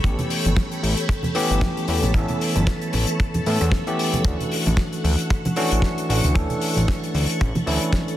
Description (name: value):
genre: nu-disco, nu disco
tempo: 114 BPM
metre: 4/4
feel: swing 56% on 16ths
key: unclear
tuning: A4 = 438 Hz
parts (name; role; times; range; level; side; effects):
- bell-like tine electric piano; accompaniment; 0.0-8.2 s; E3 to A4; -25 LUFS; equal; sidechain pumping, low-pass filter, tape echo
- string machine, full ensemble; sustained chords; 0.0-8.2 s; A4 to C#6; -30 LUFS; left 1 dB; phaser, ensemble chorus, sidechain pumping
- fat analog bass; bass; 0.0-7.8 s; G1 to A2; -22 LUFS; equal; none
- damped 70s drum kit; drums; 0.0-8.2 s; hi-hat, rim click, snare drum; -28 LUFS; left 3 dB; small room ambience, soft clipping on snare
- kick drum; drums; 0.0-8.0 s; none; -21 LUFS; equal; small room ambience
- congas; percussion; 0.2-8.1 s; none; -28 LUFS; right 1 dB; none
room: light reverb, studio ambience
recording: dense, heavily limited modern master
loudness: -19 LUFS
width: side -13 dB against mid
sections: 0.0-8.2 A section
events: filter sweep on tine electric piano 0.0-8.2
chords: 0.0 A9; 4.3 Dmaj7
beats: | 0.04 0.57 1.09 1.62 | 2.15 2.67 3.20 3.73 | 4.25 4.78 5.30 5.83 | 6.36 6.88 7.41 7.94